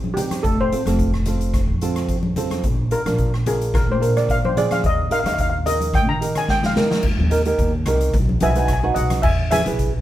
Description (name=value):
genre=calypso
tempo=109 BPM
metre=4/4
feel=swing 53% on 16ths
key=unclear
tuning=A4 = 440 Hz
part: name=steel pan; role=melody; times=0.0-10.0 s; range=G4 to Bb5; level=-22 LUFS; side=left 1 dB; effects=none
part: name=upright bass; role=bass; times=0.0-10.0 s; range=F1 to Eb3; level=-22 LUFS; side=equal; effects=none
part: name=congas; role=percussion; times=0.0-9.8 s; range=none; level=-27 LUFS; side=left 1 dB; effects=none
part: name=flamenco guitar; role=accompaniment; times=0.2-9.9 s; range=C4 to Db5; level=-24 LUFS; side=right 3 dB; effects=none
part: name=street-band drum kit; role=drums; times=0.2-9.9 s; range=crash cymbal, hi-hat, kick drum, rim click, snare drum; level=-23 LUFS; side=equal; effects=none
room=moderate studio reverb, RT60 0.7 s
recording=band playing live in one room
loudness=-17 LUFS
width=side -13 dB against mid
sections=0.0-7.0 A section; 7.0-9.2 B section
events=steel pan solo 0.0-7.0; drum fill 6.5-7.0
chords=0.4 F; 2.6 Bb7; 4.8 Eb; 8.1 B; 9.2 E